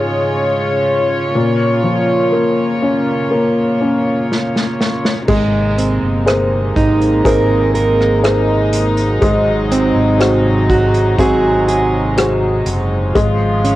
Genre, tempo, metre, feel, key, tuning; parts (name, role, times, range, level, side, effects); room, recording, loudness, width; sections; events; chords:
pop ballad; 61 BPM; 4/4; straight; Ab major; A4 = 440 Hz
warm upright piano; accompaniment; 0.0-13.8 s; Ab2 to C5; -18 LUFS; left 2 dB; cassette tape
warm chamber string section; sustained chords; 0.0-13.8 s; Ab2 to Db5; -17 LUFS; equal; cassette tape
unplugged drum kit; drums; 4.3-13.8 s; crash cymbal, hi-hat, kick drum, rim click, snare drum; -20 LUFS; equal; cassette tape
fingerpicked plugged-in steel-string acoustic guitar; arpeggios; 5.3-13.8 s; Ab2 to Bb4; -17 LUFS; right 2 dB; cassette tape
fingered electric bass; bass; 5.3-13.8 s; Gb1 to Ab1; -18 LUFS; equal
moderate spring reverb, RT60 2.5 s; home recording on cassette; -12 LUFS; side -15 dB against mid
0.0-5.3 A section; 5.3-13.8 B section
drum fill 4.3-5.3
0.0 Db/Ab; 1.4 Bbm; 5.3 Abadd9; 9.2 Ab7; 13.2 Db